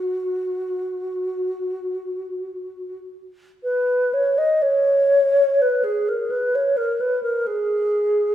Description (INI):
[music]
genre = classical, free, expressive piece for unaccompanied alto flute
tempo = 40-69 BPM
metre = 4/4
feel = rubato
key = unclear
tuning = A4 = 440 Hz
[part]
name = mellow hollow alto flute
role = solo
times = 0.0-8.3 s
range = F#4 to D#5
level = -19 LUFS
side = equal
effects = none
[sound]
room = wet scoring stage reverb, RT60 2.1 s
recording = recorded in a church or concert hall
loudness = -19 LUFS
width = side -11 dB against mid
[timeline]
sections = 0.0-3.6 A section; 3.6-8.3 A section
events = none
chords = none